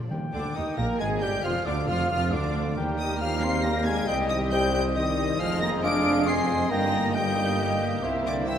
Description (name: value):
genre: classical, dramatic, fast romantic movement for symphony orchestra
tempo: 136 BPM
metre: 3/4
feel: straight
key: Eb major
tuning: A4 = 441 Hz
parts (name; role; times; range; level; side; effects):
- rich symphonic violin section; melody; 0.0-8.6 s; D5 to D7; -33 LUFS; left 1 dB; none
- rich symphonic viola section; accompaniment; 0.0-8.6 s; F3 to Bb4; -35 LUFS; right 2 dB; none
- warm chamber double bass section; bass; 0.0-8.6 s; F1 to Eb2; -34 LUFS; right 2 dB; none
- timpani; percussion; 0.0-0.7, 2.8-3.4 s; Eb3; -36 LUFS; equal; none
- dark clarinet; second line; 0.1-8.6 s; C5 to Ab5; -32 LUFS; left 1 dB; none
- mellow cor anglais; second line; 0.3-8.6 s; Bb4 to Ab5; -36 LUFS; right 1 dB; none
- rich symphonic violin section; second line; 0.3-8.6 s; D4 to Eb5; -38 LUFS; left 3 dB; none
- silver concert flute; second line; 0.3-8.6 s; D5 to D6; -34 LUFS; left 2 dB; none
- mellow bassoon; accompaniment; 0.3-8.6 s; D3 to Bb3; -33 LUFS; right 1 dB; none
- mellow French horn section; sustained chords; 0.3-8.6 s; D3 to D4; -30 LUFS; left 2 dB; none
- mellow tuba; bass; 0.3-8.6 s; F1 to Eb2; -34 LUFS; right 3 dB; none
- warm symphonic cello section; bass; 0.3-8.6 s; C2 to C3; -33 LUFS; right 2 dB; none
room: wet concert hall reverb, RT60 2.0 s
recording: none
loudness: -23 LUFS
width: side -9 dB against mid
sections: 0.1-8.6 A section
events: none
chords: 0.1 Eb; 1.4 Dm/F; 2.8 Eb; 4.1 Cm; 5.4 Fm7; 6.7 Eb/G; 8.0 C7